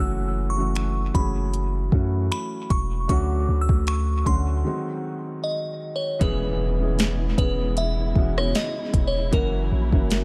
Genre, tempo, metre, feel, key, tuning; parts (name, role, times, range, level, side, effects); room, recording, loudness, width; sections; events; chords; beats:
contemporary R&B; 77 BPM; 4/4; swing 54% on 16ths; A4 = 440 Hz
glassy synth bell; melody; 0.0-10.2 s; A#4 to E6; -32 LUFS; equal; chorus, dub echo
felt-muted upright piano; accompaniment; 0.0-10.2 s; D3 to G#4; -32 LUFS; equal; dub echo
long sustained 808-style bass; bass; 0.0-10.2 s; E1 to F#2; -26 LUFS; equal
smooth R&B drum kit; drums; 0.8-10.2 s; finger snaps, hi-hat, kick drum, rim click, snare drum; -25 LUFS; equal
dark studio string section; sustained chords; 6.2-10.2 s; C#3 to E4; -36 LUFS; equal
impact; sound effects; 6.2-9.3 s; -38 LUFS; equal
digital ambience; echo-heavy mix; -24 LUFS; mono
0.0-6.2 A section; 6.2-10.2 B section
break 4.7-6.2; impact 6.2-9.3
0.0 F#m7; 3.1 Dmaj7; 4.7 G#7; 6.2 E6; 9.3 F#7
0.76 1.53 2.31 | 3.09 3.87 4.65 5.43 | 6.21 6.99 7.77 8.55 | 9.33 10.11